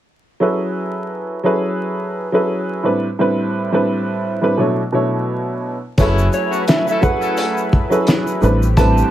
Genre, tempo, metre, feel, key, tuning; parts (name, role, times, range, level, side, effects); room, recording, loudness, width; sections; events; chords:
hip hop, boom-bap hip-hop; 86 BPM; 4/4; swing 56% on 16ths; F# minor; A4 = 440 Hz
warm upright piano; accompaniment; 0.4-9.1 s; A2 to C#5; -17 LUFS; right 1 dB; high-pass filter, low-pass filter, plate reverb
lush unison pad; sustained chords; 6.0-9.1 s; F#3 to G#5; -26 LUFS; left 2 dB; chorus, high-pass filter, low-pass filter, plate reverb
brilliant trumpet section; stabs; 6.0-7.7 s; B3 to A4; -24 LUFS; left 3 dB; high-pass filter, low-pass filter, digital delay, plate reverb
deep dub fingered electric bass; bass; 6.0-9.0 s; F#1 to A1; -15 LUFS; equal
cloth-damped thuddy drum kit; drums; 6.0-9.0 s; hi-hat, kick drum, shaker, snare drum; -16 LUFS; equal
egg shaker; percussion; 6.0-9.1 s; -38 LUFS; left 11 dB
electric guitar at the edge of break-up; melody; 6.3-9.1 s; C#5 to A5; -21 LUFS; right 2 dB; warbly pitch drift, high-pass filter, low-pass filter, plate reverb
moderate small room reverb, RT60 0.5 s; vinyl crackle; -15 LUFS; side -12 dB against mid
0.4-6.0 A section; 6.0-9.1 B section
0.4 F#m11; 2.8 Am11; 4.6 Bm11; 6.0 F#m11; 8.4 Am11